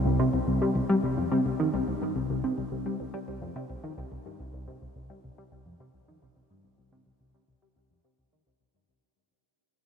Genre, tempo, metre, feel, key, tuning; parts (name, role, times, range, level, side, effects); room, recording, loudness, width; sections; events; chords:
ambient; 107 BPM; 4/4; straight; C minor; A4 = 440 Hz
tight sequenced synth; riff; 0.0-9.0 s; C2 to G3; -27 LUFS; equal; chorus, phaser, tape echo
wet huge ambient reverb, RT60 8.3 s; dark, warm production; -26 LUFS; side -7 dB against mid
0.0-9.0 A section
fade-out on synth arpeggio sound 0.0-9.0; fade-out 0.0-9.0